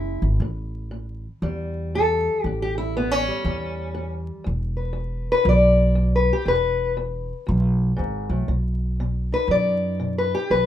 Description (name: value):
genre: acoustic country blues, solo or duo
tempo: 119 BPM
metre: 4/4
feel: swing 63% on 8ths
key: unclear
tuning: A4 = 438 Hz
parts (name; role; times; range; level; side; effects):
- fingerpicked steel-string acoustic guitar; melody; 0.0-10.7 s; E2 to D5; -22 LUFS; left 2 dB; none
- upright bass; bass; 0.0-10.7 s; E1 to F#2; -23 LUFS; equal; none
room: light reverb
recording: minimal, uncompressed stereo recording, vinyl crackle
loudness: -20 LUFS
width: side -11 dB against mid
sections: 0.0-10.7 A section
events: steel-string acoustic guitar solo 0.0-10.7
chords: 0.4 A7; 4.5 E5; 8.5 B